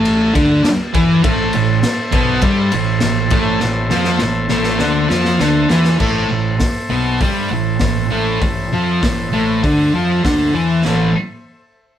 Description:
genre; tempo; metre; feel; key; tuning
garage rock duo or trio; 100 BPM; 4/4; straight; A minor; A4 = 443 Hz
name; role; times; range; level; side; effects
thick fuzz guitar; riff; 0.0-11.1 s; A2 to G4; -15 LUFS; equal; distortion
fuzz fingered electric bass; bass; 0.0-11.1 s; A1 to G2; -23 LUFS; equal; overdrive
raw garage drum kit; drums; 0.1-11.0 s; crash cymbal, hi-hat, kick drum, ride cymbal, snare drum; -20 LUFS; equal; none
combo organ; sustained chords; 1.2-11.2 s; A4 to E5; -23 LUFS; left 2 dB; spring reverb
room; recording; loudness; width
moderate studio reverb, RT60 0.6 s; band playing live in one room; -13 LUFS; side -10 dB against mid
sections
0.0-6.0 A section; 6.0-10.9 B section; 10.9-12.0 C section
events
drum fill 3.6-6.0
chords
0.0 Am

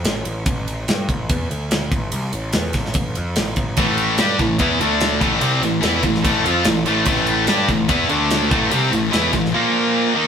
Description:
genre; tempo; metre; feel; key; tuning
heavy metal; 146 BPM; 4/4; straight; A phrygian; A4 = 440 Hz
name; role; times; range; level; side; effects
fuzz picked electric bass; bass; 0.0-9.5 s; A1 to G2; -24 LUFS; equal; overdrive
tight metal drum kit; drums; 0.0-9.5 s; kick drum, ride cymbal, snare drum; -22 LUFS; equal; none
heavy high-gain guitar; riff; 3.8-10.3 s; A2 to G4; -18 LUFS; left 7 dB; distortion
high-gain distorted guitar; riff; 3.8-10.3 s; A2 to G4; -20 LUFS; right 6 dB; distortion
room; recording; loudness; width
moderate studio reverb, RT60 0.8 s; band playing live in one room; -16 LUFS; side -7 dB against mid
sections
0.0-10.3 A section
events
none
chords
0.0 A5; 1.5 N.C.; 1.9 A5; 4.8 D5; 5.2 Am; 8.1 D5; 8.5 Am; 9.5 Bb5

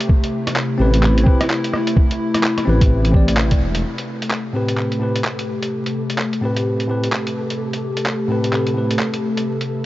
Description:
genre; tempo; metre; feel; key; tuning
future garage; 128 BPM; 4/4; swing 61% on 16ths; A minor; A4 = 440 Hz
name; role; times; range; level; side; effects
warbly tape-like pad; sustained chords; 0.0-9.9 s; C3 to G4; -22 LUFS; left 1 dB; chorus, built-in reverb, phaser, vintage 12-bit sampler grit, sidechain pumping
lo-fi sampler-style drum kit; drums; 0.0-9.7 s; handclaps, hi-hat, rim click; -24 LUFS; equal; none
electronic kick drum; drums; 0.1-3.6 s; none; -14 LUFS; equal; none
bell-like tine electric piano; accompaniment; 0.8-9.0 s; A2 to D5; -24 LUFS; left 1 dB; sidechain pumping, tape echo
dark detuned saw bass; bass; 0.8-3.8 s; E1 to A1; -16 LUFS; equal; sidechain pumping
flickering grainy texture; texture; 4.2-9.9 s; A4; -32 LUFS; right 3 dB; built-in reverb
room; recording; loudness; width
moderate huge ambient reverb, RT60 5.7 s; vinyl crackle, nothing above 7.7 kHz; -16 LUFS; side -16 dB against mid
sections
0.0-3.8 A section; 3.8-9.9 B section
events
band accent 3.4; filter sweep on ambient pad 3.8-9.9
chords
0.0 Am7

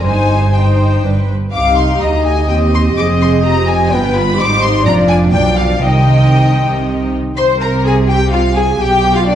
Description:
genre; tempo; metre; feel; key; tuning
quick classical-period movement for string orchestra; 116-130 BPM; 3/4; rubato; C minor; A4 = 440 Hz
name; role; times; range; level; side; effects
clear studio violin section; melody; 0.0-9.3 s; D5 to D6; -19 LUFS; left 3 dB; none
warm studio violin section; second line; 0.0-9.3 s; D4 to G5; -18 LUFS; left 3 dB; none
rich chamber viola section; accompaniment; 0.0-9.3 s; Eb3 to C5; -18 LUFS; right 1 dB; none
dark studio double bass section; bass; 0.0-9.3 s; F1 to Eb2; -16 LUFS; right 1 dB; none
warm studio cello section; bass; 0.0-9.3 s; C2 to C3; -17 LUFS; right 2 dB; none
room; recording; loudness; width
wet recital hall reverb, RT60 1.5 s; dark, warm production, nothing above 10.7 kHz; -10 LUFS; side -10 dB against mid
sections
0.0-7.4 A section; 7.4-9.3 A section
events
none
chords
0.0 Cm/G; 1.0 G; 1.5 Cm; 2.5 Cm/Eb; 3.0 Fm9; 3.9 G7; 4.4 Abmaj7; 4.9 Dm/F; 5.3 G7/B; 5.8 Cm; 7.4 Fm/C; 8.8 G7/B

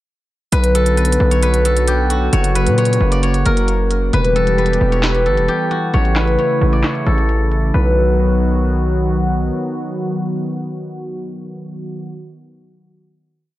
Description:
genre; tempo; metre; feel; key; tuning
hip hop, trap; 133 BPM; 4/4; half-time; unclear; A4 = 440 Hz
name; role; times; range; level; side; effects
steel-string zither; melody; 0.5-9.8 s; F#4 to D5; -18 LUFS; left 1 dB; low-pass filter, tape echo
warm analog pad; sustained chords; 0.5-12.1 s; C#3 to G4; -21 LUFS; equal; chorus
distorted 808-style bass; bass; 0.5-9.5 s; E1 to A#2; -16 LUFS; equal; distortion
trap drum kit; drums; 0.5-7.6 s; handclaps, hi-hat, snare drum; -23 LUFS; right 1 dB; none
room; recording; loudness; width
light reverb; echo-heavy mix, low-pass filter; -14 LUFS; side -15 dB against mid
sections
0.5-7.7 breakdown; 7.7-11.3 final chord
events
none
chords
0.5 Bm; 2.3 F#; 4.1 Em; 5.9 A; 7.7 B

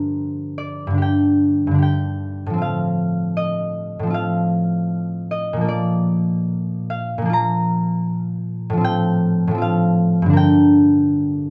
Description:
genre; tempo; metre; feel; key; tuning
classical, solo harp piece; 67-81 BPM; 4/4; rubato; Bb major; A4 = 435 Hz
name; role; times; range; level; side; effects
concert harp; solo; 0.0-11.5 s; G2 to Bb5; -19 LUFS; equal; none
room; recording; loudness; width
light reverb; close, detailed microphones; -19 LUFS; mono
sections
0.0-11.5 A section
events
none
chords
0.0 Gm; 2.6 F/A; 5.7 Bb; 8.8 F/A; 10.4 Gm

